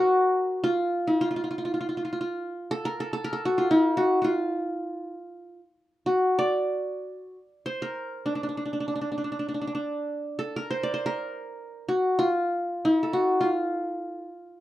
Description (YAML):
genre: Arabic maqam ensemble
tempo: free time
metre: none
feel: none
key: D maqam saba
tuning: A4 = 440 Hz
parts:
  - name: qanun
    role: solo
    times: 0.0-14.6 s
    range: D4 to D5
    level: -24 LUFS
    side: equal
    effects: none
room: light reverb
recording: rough home demo mix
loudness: -24 LUFS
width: side -14 dB against mid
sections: 0.0-14.6 A section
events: none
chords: none